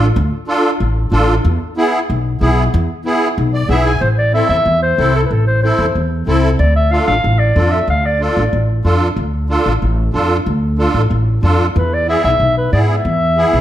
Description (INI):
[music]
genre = latin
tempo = 186 BPM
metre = 4/4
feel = straight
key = A harmonic minor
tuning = A4 = 440 Hz
[part]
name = musette accordion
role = accompaniment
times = 0.0-13.6 s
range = B3 to G#5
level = -17 LUFS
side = right 1 dB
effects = none
[part]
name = upright bass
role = bass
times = 0.0-13.6 s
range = A1 to G#2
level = -15 LUFS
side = equal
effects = none
[part]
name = mellow clarinet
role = melody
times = 4.0-8.7, 11.8-13.6 s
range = A4 to F5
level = -16 LUFS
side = left 1 dB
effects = none
[sound]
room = moderate large studio reverb, RT60 1.4 s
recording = none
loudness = -12 LUFS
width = side -12 dB against mid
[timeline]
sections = 0.0-4.0 A section; 4.0-13.6 B section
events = accordion fill 3.4-4.0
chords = 0.0 Dm; 1.4 E; 4.0 Am; 6.6 Dm; 11.8 E